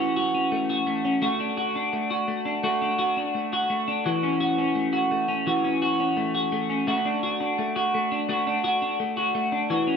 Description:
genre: dream pop.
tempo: 85 BPM.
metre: 4/4.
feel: straight.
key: unclear.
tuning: A4 = 440 Hz.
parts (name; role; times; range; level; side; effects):
semi-hollow electric guitar; solo; 0.0-10.0 s; E3 to F#4; -22 LUFS; equal; analog chorus, ping-pong delay.
room: moderate plate reverb, RT60 2.5 s.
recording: none.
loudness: -22 LUFS.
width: side -6 dB against mid.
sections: 0.0-10.0 A section.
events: none.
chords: 0.0 F#m7; 1.2 D/A; 4.0 F#m7; 6.9 D/A.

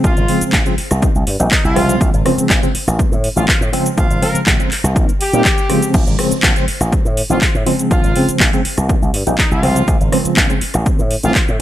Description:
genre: filtered disco house.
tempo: 122 BPM.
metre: 4/4.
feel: straight.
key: Bb dorian.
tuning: A4 = 439 Hz.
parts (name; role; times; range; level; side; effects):
bright horn section; melody; 0.0-11.4 s; Eb4 to Bb4; -23 LUFS; equal; sidechain pumping, diffuse ambient delay.
reed electric piano; accompaniment; 0.0-11.6 s; Db3 to Eb4; -18 LUFS; equal; fast tremolo, phaser, sidechain pumping.
slap bass with an envelope filter; bass; 0.0-11.6 s; Ab1 to Bb2; -18 LUFS; equal; sidechain pumping.
electronic kick drum; drums; 0.0-11.5 s; none; -16 LUFS; equal; overdrive.
house drum kit; drums; 0.0-11.6 s; cabasa, crash cymbal, handclaps, hi-hat, rim click; -19 LUFS; equal; overdrive, sidechain pumping on hats, sidechain pumping on perc, sidechain pumping on cymbals.
room: digital ambience.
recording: none.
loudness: -12 LUFS.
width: side -13 dB against mid.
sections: 0.0-11.6 A section.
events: none.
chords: 0.0 Bbm7; 0.8 Cm7; 2.0 Bbm7; 2.7 Am7b5; 3.7 Bbm7; 4.7 Cm7; 5.9 Bbm7; 6.7 Am7b5; 7.7 Bbm7; 8.6 Cm7; 9.9 Bbm7; 10.6 Am7b5.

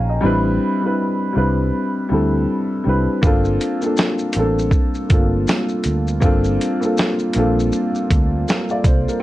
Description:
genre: lo-fi hip hop.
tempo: 80 BPM.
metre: 4/4.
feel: swing 59% on 16ths.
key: G dorian.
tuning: A4 = 440 Hz.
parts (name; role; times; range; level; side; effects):
dark upright piano; accompaniment; 0.0-9.2 s; G3 to Bb5; -19 LUFS; left 1 dB; low-pass filter.
vintage muted fingered electric bass; bass; 0.0-9.1 s; G1 to D2; -20 LUFS; equal; none.
dark analog pad; sustained chords; 3.6-9.2 s; G3 to F4; -26 LUFS; right 4 dB; chorus, low-pass filter.
dusty soul sampler-style drum kit; drums; 3.2-9.2 s; hi-hat, kick drum, shaker, snare drum; -18 LUFS; equal; overdrive.
tambourine; percussion; 4.0-8.7 s; none; -38 LUFS; right 12 dB; none.
room: light reverb.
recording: cassette tape.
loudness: -16 LUFS.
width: side -16 dB against mid.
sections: 0.0-9.2 A section.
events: none.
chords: 0.2 Am11; 3.2 Gm11.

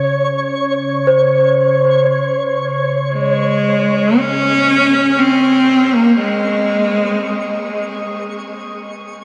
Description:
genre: ambient.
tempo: free time.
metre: none.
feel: none.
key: unclear.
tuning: A4 = 439 Hz.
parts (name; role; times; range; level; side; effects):
analog drone; drone; 0.0-4.3 s; Db3; -24 LUFS; equal; chorus.
twinkling granular texture; texture; 0.0-9.2 s; Db5 to Db6; -24 LUFS; equal; built-in reverb.
celesta; arpeggios; 1.1-4.2 s; C5; -19 LUFS; equal; tape echo.
bright cello; melody; 3.1-7.7 s; Ab3 to Db4; -16 LUFS; equal; tape echo.
room: wet shimmer reverb, RT60 7.9 s.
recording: dark, warm production, nothing above 10.4 kHz.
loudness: -15 LUFS.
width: mono.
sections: 0.0-4.2 A section; 4.2-9.2 B section.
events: none.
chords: 0.0 Db5; 4.2 N.C..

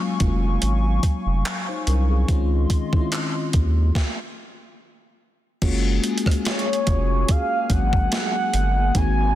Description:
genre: contemporary R&B.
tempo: 72 BPM.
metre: 4/4.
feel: swing 54% on 16ths.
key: unclear.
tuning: A4 = 440 Hz.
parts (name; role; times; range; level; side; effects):
mellow FM electric piano; accompaniment; 0.0-9.3 s; Eb3 to C5; -27 LUFS; left 3 dB; chorus.
hollow soft pad; sustained chords; 0.0-9.3 s; Gb3 to Db6; -31 LUFS; left 2 dB; chorus, sidechain pumping.
saturated sub bass; bass; 0.2-9.3 s; F1 to Eb2; -20 LUFS; equal; none.
gated 80s digital drum machine; drums; 0.2-9.2 s; crash cymbal, handclaps, hi-hat, kick drum, rim click, snare drum; -23 LUFS; equal; gated reverb, gated reverb snare, soft clipping on snare.
mellow horn-like synth lead; melody; 6.5-9.3 s; Db5 to Ab5; -24 LUFS; right 1 dB; chorus, phaser, digital delay.
room: little or no reverb.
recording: dense, heavily limited modern master.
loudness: -19 LUFS.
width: side -13 dB against mid.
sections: 0.0-5.6 A section; 5.6-9.3 B section.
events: stop 4.0-5.6.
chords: 0.0 Ebm11; 2.3 Dbmaj9; 5.6 Gbmaj9.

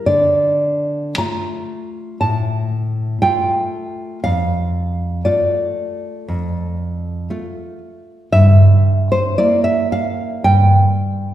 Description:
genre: romantic piece for solo classical guitar.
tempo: 58 BPM.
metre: 4/4.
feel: rubato.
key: D minor.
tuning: A4 = 440 Hz.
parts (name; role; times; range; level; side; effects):
nylon-string guitar; solo; 0.0-11.3 s; F2 to Bb5; -15 LUFS; equal; none.
room: wet scoring stage reverb, RT60 1.6 s.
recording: recorded in a church or concert hall.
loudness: -14 LUFS.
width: side -12 dB against mid.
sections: 0.0-11.3 A section.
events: none.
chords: 0.1 Dm; 4.2 Dm/F; 8.3 Edim/G.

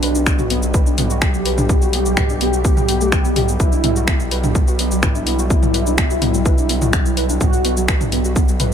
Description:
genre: melodic techno.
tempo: 126 BPM.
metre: 4/4.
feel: straight.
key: B minor.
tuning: A4 = 441 Hz.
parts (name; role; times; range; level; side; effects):
mellow synth brass; melody; 0.0-8.0 s; D4 to G4; -23 LUFS; equal; chorus, sidechain pumping, ping-pong delay.
soft round pluck; arpeggios; 0.0-8.6 s; F#3 to B4; -23 LUFS; left 1 dB; ensemble chorus, sidechain pumping, digital delay.
gritty driven synth bass; bass; 0.0-8.7 s; B1; -21 LUFS; equal; sidechain pumping.
analog drone; drone; 0.0-8.7 s; B2 to G3; -30 LUFS; equal; chorus, sidechain pumping.
house drum kit; drums; 0.0-8.7 s; finger snaps, hi-hat, shaker, toms; -21 LUFS; equal; none.
electronic kick drum; drums; 0.3-8.5 s; none; -16 LUFS; equal; none.
room: digital ambience.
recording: none.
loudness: -14 LUFS.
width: side -8 dB against mid.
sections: 0.0-8.7 A section.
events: none.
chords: 0.0 Dsus4/B; 3.6 B5.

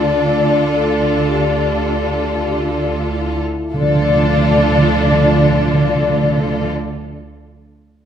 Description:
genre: classical, slow romantic movement for symphony orchestra.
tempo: 51 BPM.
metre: 4/4.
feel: rubato.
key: D minor.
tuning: A4 = 439 Hz.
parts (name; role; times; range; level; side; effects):
rich studio violin section; melody; 0.0-6.7 s; A4; -26 LUFS; left 3 dB; none.
dark studio violin section; second line; 0.0-6.7 s; F4; -25 LUFS; left 4 dB; none.
flute section; second line; 0.0-6.7 s; D5; -19 LUFS; left 4 dB; none.
rich studio viola section; accompaniment; 0.0-6.7 s; D4; -24 LUFS; right 3 dB; none.
warm studio cello section; bass; 0.0-6.7 s; D3; -23 LUFS; right 3 dB; none.
warm studio double bass section; bass; 0.0-6.7 s; D2; -20 LUFS; right 4 dB; none.
timpani; percussion; 0.0-6.7 s; D3; -19 LUFS; right 1 dB; none.
mellow French horn section; sustained chords; 0.1-6.7 s; F3 to A4; -24 LUFS; left 4 dB; none.
room: wet recital hall reverb, RT60 1.7 s.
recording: none.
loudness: -13 LUFS.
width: side -9 dB against mid.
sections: 0.0-3.7 A section; 3.7-8.1 B section.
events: slowing down 0.0-3.7.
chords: 0.0 Dm.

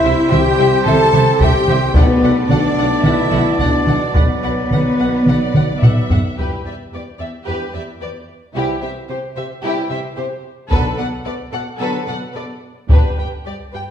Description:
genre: cinematic, epic orchestral film score.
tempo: 110 BPM.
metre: 4/4.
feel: straight.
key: B phrygian.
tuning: A4 = 441 Hz.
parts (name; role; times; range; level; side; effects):
warm symphonic violin section; second line; 0.0-13.8 s; D4 to A5; -25 LUFS; left 3 dB; none.
rich symphonic viola section; accompaniment; 0.0-13.8 s; G4 to E5; -29 LUFS; right 1 dB; none.
mellow French horn section; sustained chords; 0.0-13.1 s; B3 to C5; -20 LUFS; left 3 dB; none.
warm trombone section; sustained chords; 0.0-13.1 s; B2 to A3; -26 LUFS; right 3 dB; none.
warm trumpet; stabs; 0.0-6.1 s; C5 to D5; -22 LUFS; right 4 dB; none.
clear symphonic double bass section; bass; 0.0-13.2 s; E1 to C2; -23 LUFS; right 2 dB; none.
mellow tuba; bass; 0.0-6.2 s; B1 to C2; -24 LUFS; right 2 dB; none.
warm symphonic cello section; bass; 0.0-13.8 s; E2 to A4; -24 LUFS; right 1 dB; none.
warm symphonic violin section; melody; 0.1-13.8 s; G4 to G5; -27 LUFS; left 3 dB; none.
taiko ensemble; drums; 0.3-7.4, 10.7-13.4 s; none; -16 LUFS; equal; none.
timpani; percussion; 1.9-2.7 s; B2; -25 LUFS; left 2 dB; none.
room: wet recital hall reverb, RT60 1.4 s.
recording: heard from further back in the room.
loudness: -13 LUFS.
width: side -9 dB against mid.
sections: 0.0-6.4 A section; 6.4-13.9 B section.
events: drum fill 5.5-6.4.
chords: 0.0 C; 2.0 Bm7; 4.2 Bm; 6.4 Em7; 8.6 C; 10.7 Bm7; 12.9 G.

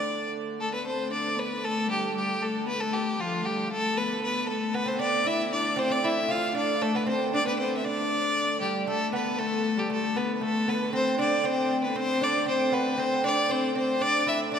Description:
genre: medieval dance.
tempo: 116 BPM.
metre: 2/4.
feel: straight.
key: unclear.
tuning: A4 = 440 Hz.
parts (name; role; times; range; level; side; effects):
clear fiddle; melody; 0.0-14.6 s; F4 to F5; -27 LUFS; left 1 dB; none.
dark viola da gamba; second line; 0.0-14.6 s; F3 to F4; -30 LUFS; left 3 dB; none.
lute; second line; 0.0-0.3, 4.7-14.6 s; G3 to F4; -31 LUFS; right 5 dB; none.
warm hurdy-gurdy; drone; 0.0-14.6 s; D3 to A3; -35 LUFS; right 2 dB; none.
room: wet concert hall reverb, RT60 2.6 s.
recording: none.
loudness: -24 LUFS.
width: side -7 dB against mid.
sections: 0.6-8.9 A section; 8.9-14.6 B section.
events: none.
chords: none.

